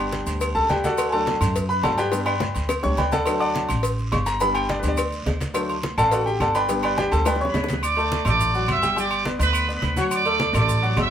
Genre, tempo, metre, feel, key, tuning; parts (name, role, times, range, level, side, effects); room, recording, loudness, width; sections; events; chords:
latin, salsa; 210 BPM; 4/4; straight; D major; A4 = 445 Hz
clear baby grand piano; accompaniment; 0.0-11.1 s; F#3 to D6; -23 LUFS; left 1 dB
upright bass; bass; 0.0-11.1 s; G1 to G2; -26 LUFS; equal
congas; percussion; 0.1-11.1 s; -30 LUFS; right 1 dB
cowbell and bongos; percussion; 0.1-7.8 s; -30 LUFS; left 4 dB
guiro; percussion; 0.1-11.1 s; -38 LUFS; right 3 dB
maracas; percussion; 0.1-11.1 s; -39 LUFS; left 4 dB
agogo bells and timbales; percussion; 0.3-11.1 s; -30 LUFS; right 2 dB
claves; percussion; 0.4-11.1 s; -35 LUFS; left 2 dB
bright trumpet section; melody; 7.5-11.1 s; B4 to E6; -23 LUFS; right 3 dB
moderate studio reverb, RT60 0.8 s; band playing live in one room; -19 LUFS; side -9 dB against mid
0.0-7.8 A section; 7.8-11.1 B section
grand piano solo 0.0-7.8; drum fill 2.1-3.3, 7.3-7.8
0.0 G; 1.0 D; 2.1 G; 3.3 D; 4.4 G; 5.5 D; 6.7 G; 7.8 D; 9.0 G; 10.1 D